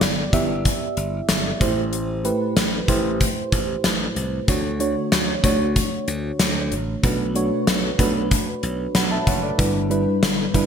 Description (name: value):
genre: 1980s-style pop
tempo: 94 BPM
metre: 4/4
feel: straight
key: D major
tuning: A4 = 440 Hz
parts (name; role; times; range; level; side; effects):
- mellow FM electric piano; accompaniment; 0.0-10.7 s; G2 to B5; -23 LUFS; right 2 dB; chorus
- glassy slap bass; bass; 0.0-10.7 s; F#1 to D2; -27 LUFS; equal; none
- gated 80s drum kit; drums; 0.0-10.7 s; hi-hat, kick drum, snare drum; -21 LUFS; left 1 dB; gated reverb
room: moderate lush hall reverb, RT60 1.7 s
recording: bright 1980s-style digital production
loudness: -19 LUFS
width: side -7 dB against mid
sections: 0.0-10.7 A section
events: none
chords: 0.0 G6; 1.6 Am7; 4.5 Dmaj7; 7.0 Bm7; 9.6 G6